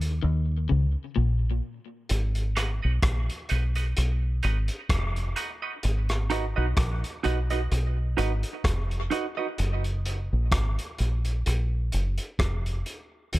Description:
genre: dub reggae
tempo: 64 BPM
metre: 4/4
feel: swing 56% on 16ths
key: G# dorian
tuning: A4 = 440 Hz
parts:
  - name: electric guitar at the edge of break-up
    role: riff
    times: 0.0-1.4 s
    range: A#2 to D#3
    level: -30 LUFS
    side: left 4 dB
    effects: tape echo
  - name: deep dub fingered electric bass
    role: bass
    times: 0.0-13.4 s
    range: E#1 to D#2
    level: -25 LUFS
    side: equal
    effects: none
  - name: crunchy breakbeat drum kit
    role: drums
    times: 0.0-13.4 s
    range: hi-hat, kick drum, rim click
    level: -30 LUFS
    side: equal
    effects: none
  - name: semi-hollow electric guitar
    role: accompaniment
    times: 2.6-9.5 s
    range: D#4 to D#5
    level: -31 LUFS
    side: right 5 dB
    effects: high-pass filter, tape echo
room: small room ambience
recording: none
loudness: -24 LUFS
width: side -18 dB against mid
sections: 0.0-2.1 A section; 2.1-13.4 B section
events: break 0.0-2.1; drums muted 0.2-2.1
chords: 0.0 D#7(no3); 2.1 G#m7; 9.6 F#maj7

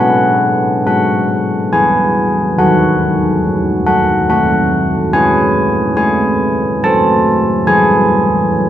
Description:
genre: classical, tune for church bells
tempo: 70 BPM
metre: 3/4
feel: straight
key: unclear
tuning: A4 = 440 Hz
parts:
  - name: carillon bells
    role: solo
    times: 0.0-8.7 s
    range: D#3 to A5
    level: -10 LUFS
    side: equal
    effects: none
room: moderate concert hall reverb, RT60 2.4 s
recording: dark, warm production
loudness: -10 LUFS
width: side -11 dB against mid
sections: 0.0-8.7 A section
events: none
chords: 0.0 B5; 2.6 D#dim; 5.1 C#5; 7.7 Eadd9

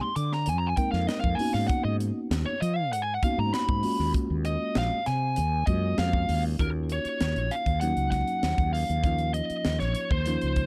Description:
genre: electric jazz fusion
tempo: 98 BPM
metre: 4/4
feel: straight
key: Eb minor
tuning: A4 = 441 Hz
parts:
  - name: biting lead guitar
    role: melody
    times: 0.0-10.7 s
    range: Bb4 to D6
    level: -32 LUFS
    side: equal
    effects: overdrive
  - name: mellow tine electric piano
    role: accompaniment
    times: 0.0-10.7 s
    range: F3 to Bb4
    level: -34 LUFS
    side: equal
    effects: none
  - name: mellow fretless electric bass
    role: bass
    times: 0.0-10.7 s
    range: Bb1 to F3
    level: -30 LUFS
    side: equal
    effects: none
  - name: crisp fusion drum kit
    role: drums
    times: 0.2-10.7 s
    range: hi-hat, kick drum, snare drum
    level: -33 LUFS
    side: equal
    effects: none
room: little or no reverb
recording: dark, warm production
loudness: -27 LUFS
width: mono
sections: 0.0-6.6 A section; 6.6-10.7 B section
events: lead electric guitar solo 0.0-6.6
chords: 0.0 Fm11; 1.4 Abm11; 3.8 Ebm11; 6.6 Ebm9

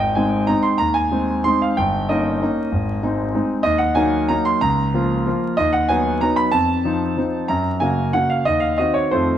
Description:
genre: classical, piano waltz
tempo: 188 BPM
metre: 3/4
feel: uneven beats, rubato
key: Bb minor from 3.6 s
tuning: A4 = 438 Hz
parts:
  - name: clear concert grand piano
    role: solo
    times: 0.0-9.4 s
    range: G1 to C6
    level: -17 LUFS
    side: equal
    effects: none
room: light reverb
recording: close, detailed microphones, vinyl crackle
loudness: -17 LUFS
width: side -10 dB against mid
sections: 0.0-9.4 A section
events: none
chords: 0.0 Ab; 1.8 Eb7/G; 2.7 Ab; 3.6 Ebm; 4.6 Bbm/Db; 5.6 B/D#; 6.5 F7; 7.5 Gb; 8.4 Cdim/Eb

